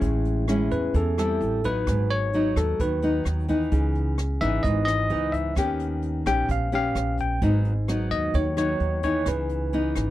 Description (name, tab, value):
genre	bossa nova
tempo	130 BPM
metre	4/4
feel	straight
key	C# minor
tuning	A4 = 440 Hz
part	nylon-string guitar	accompaniment	0.0-10.1 s	G#2 to G4	-26 LUFS	left 1 dB	none
part	upright bass	bass	0.0-10.1 s	G#1 to E2	-26 LUFS	right 1 dB	none
part	jazz brush drum kit	drums	0.0-10.1 s	hi-hat, kick drum, rim click	-30 LUFS	equal	none
part	bell-like tine electric piano	melody	0.7-10.1 s	A4 to G5	-27 LUFS	equal	slow stereo tremolo
room	little or no reverb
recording	dry, close 1970s-style studio recording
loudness	-22 LUFS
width	side -14 dB against mid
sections	0.0-10.1 A section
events	none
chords	0.0 Amaj7; 1.4 Am7; 1.9 G#m7; 3.7 C#m9; 5.6 D#7b13; 7.4 G#m7; 9.3 C#m9